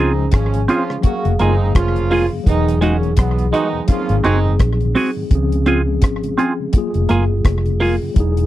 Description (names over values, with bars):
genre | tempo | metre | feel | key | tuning
lovers rock reggae | 84 BPM | 4/4 | swing 58% on 16ths | unclear | A4 = 440 Hz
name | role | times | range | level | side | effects
warm horn section | second line | 0.0-4.5 s | Db3 to Gb4 | -23 LUFS | right 5 dB | none
mellow tine electric piano | accompaniment | 0.0-8.5 s | Eb3 to F5 | -22 LUFS | left 2 dB | medium stereo tremolo, slapback echo
mellow tonewheel organ | accompaniment | 0.0-8.5 s | E2 to F#4 | -27 LUFS | left 2 dB | none
semi-hollow electric guitar | stabs | 0.0-8.0 s | G#3 to Ab4 | -16 LUFS | right 3 dB | phaser
vintage muted fingered electric bass | bass | 0.0-8.5 s | E1 to Db2 | -18 LUFS | equal | none
deep reggae drum kit | drums | 0.3-8.5 s | hi-hat, kick drum, rim click | -14 LUFS | equal | none
room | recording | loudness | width
light reverb | dry, close 1970s-style studio recording | -14 LUFS | side -14 dB against mid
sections
0.0-8.5 A section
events
none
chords
0.0 Dbmaj7; 1.0 Gbmaj9; 2.5 Emaj9; 3.9 Ab7; 5.3 Dbmaj7; 6.7 Gbmaj9